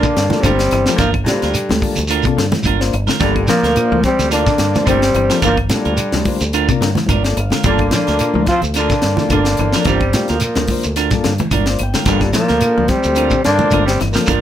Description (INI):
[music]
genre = afrobeat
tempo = 108 BPM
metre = 4/4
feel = swing 55% on 16ths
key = G dorian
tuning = A4 = 440 Hz
[part]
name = dark trombone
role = melody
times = 0.0-14.4 s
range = G3 to F4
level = -18 LUFS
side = equal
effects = none
[part]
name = bright alto saxophone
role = second line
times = 0.0-14.4 s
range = D3 to C4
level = -25 LUFS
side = right 4 dB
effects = none
[part]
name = raspy baritone saxophone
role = second line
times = 0.0-14.4 s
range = G2 to F3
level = -25 LUFS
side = left 4 dB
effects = none
[part]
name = combo organ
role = accompaniment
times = 0.0-14.3 s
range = Bb3 to G5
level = -24 LUFS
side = left 4 dB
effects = none
[part]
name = clean electric guitar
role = stabs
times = 0.0-14.4 s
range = D4 to Bb4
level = -22 LUFS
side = right 10 dB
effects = none
[part]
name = tight funk drum kit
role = drums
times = 0.0-14.4 s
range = hi-hat, kick drum, snare drum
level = -20 LUFS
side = equal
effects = none
[part]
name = shekere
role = percussion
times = 0.0-14.4 s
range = none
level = -24 LUFS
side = right 2 dB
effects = none
[part]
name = clean electric guitar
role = arpeggios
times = 0.1-14.4 s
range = G2 to G3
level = -23 LUFS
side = left 8 dB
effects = none
[part]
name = fingered electric bass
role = bass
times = 0.2-14.4 s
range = G1 to G2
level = -20 LUFS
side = equal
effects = none
[part]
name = congas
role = percussion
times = 0.3-14.4 s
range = none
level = -23 LUFS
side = right 1 dB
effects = none
[part]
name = claves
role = percussion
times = 0.4-14.2 s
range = none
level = -31 LUFS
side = left 3 dB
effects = none
[sound]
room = moderate studio reverb, RT60 0.5 s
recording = none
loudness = -13 LUFS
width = side -10 dB against mid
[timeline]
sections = 0.0-14.4 A section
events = transistor combo organ fill 6.8-7.6, 11.2-12.1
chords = 0.0 Gm7